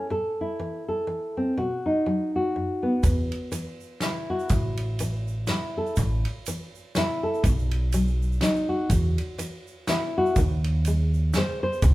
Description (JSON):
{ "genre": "acoustic folk duo or small band", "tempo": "123 BPM", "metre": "3/4", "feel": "swing 57% on 8ths", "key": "E major", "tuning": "A4 = 439 Hz", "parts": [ { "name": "nylon-string guitar", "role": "accompaniment", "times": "0.0-11.9 s", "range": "E2 to B#4", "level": "-26 LUFS", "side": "left 1 dB", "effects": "none" }, { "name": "upright bass", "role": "bass", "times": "3.0-11.9 s", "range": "A1 to E2", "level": "-23 LUFS", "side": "equal", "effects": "none" }, { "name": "natural country drum kit", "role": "drums", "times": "3.0-11.9 s", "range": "kick drum, ride cymbal, snare drum", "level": "-27 LUFS", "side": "equal", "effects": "none" }, { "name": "tube shaker", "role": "percussion", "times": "3.0-11.9 s", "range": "none", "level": "-41 LUFS", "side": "right 7 dB", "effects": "none" } ], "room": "moderate large studio reverb, RT60 1.1 s", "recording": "band playing live in one room", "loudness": "-23 LUFS", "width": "side -17 dB against mid", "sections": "0.0-3.0 A section; 3.0-11.9 A section", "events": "none", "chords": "0.1 Am; 1.6 B; 3.0 Esus2; 4.5 A5; 7.4 B; 8.9 Esus2; 10.4 G#/D#", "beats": "| 0.10 0.59 1.08 | 1.57 2.06 2.55 | 3.04 3.53 4.02 | 4.51 5.00 5.49 | 5.98 6.46 6.95 | 7.44 7.93 8.42 | 8.90 9.39 9.88 | 10.37 10.86 11.34 | 11.83" }